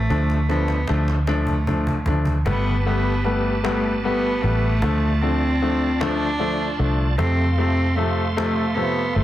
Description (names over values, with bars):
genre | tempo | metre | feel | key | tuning
six-eight pop ballad | 51 BPM (dotted quarters) | 6/8 | straight | unclear | A4 = 440 Hz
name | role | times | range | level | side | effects
rich cello | melody | 0.0-9.2 s | A3 to D4 | -25 LUFS | right 1 dB | tape echo
vintage muted fingered electric bass | bass | 0.0-9.2 s | G1 to F2 | -22 LUFS | equal | none
bright concert grand piano | accompaniment | 0.1-9.2 s | C3 to D4 | -24 LUFS | left 3 dB | none
cajon | drums | 0.1-9.2 s | none | -30 LUFS | right 1 dB | none
bright tonewheel organ | sustained chords | 2.5-9.2 s | F4 to C6 | -30 LUFS | right 3 dB | chorus vibrato, wide subtle chorus
room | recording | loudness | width
small room ambience | dense, heavily limited modern master | -18 LUFS | side -13 dB against mid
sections
0.0-2.5 A section; 2.5-9.2 B section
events
drum fill 0.1-2.5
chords
0.1 Dm; 2.5 Gadd9; 4.8 Dm; 7.2 F